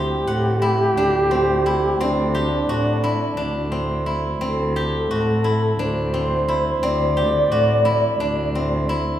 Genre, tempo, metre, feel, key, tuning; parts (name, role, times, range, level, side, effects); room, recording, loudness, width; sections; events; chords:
contemporary instrumental, chamber music in an uneven meter; 174 BPM (eighths); 7/8; straight; D mixolydian; A4 = 440 Hz
breathy flugelhorn; melody; 0.0-8.9 s; D4 to D5; -21 LUFS; equal
steel-string zither; arpeggios; 0.0-9.2 s; C4 to F#5; -24 LUFS; equal
dark cello; bass; 0.0-9.2 s; D2 to A2; -23 LUFS; equal
wet recital hall reverb, RT60 1.7 s; recorded in a church or concert hall; -18 LUFS; side -11 dB against mid
0.0-9.2 A section
0.0 D7sus4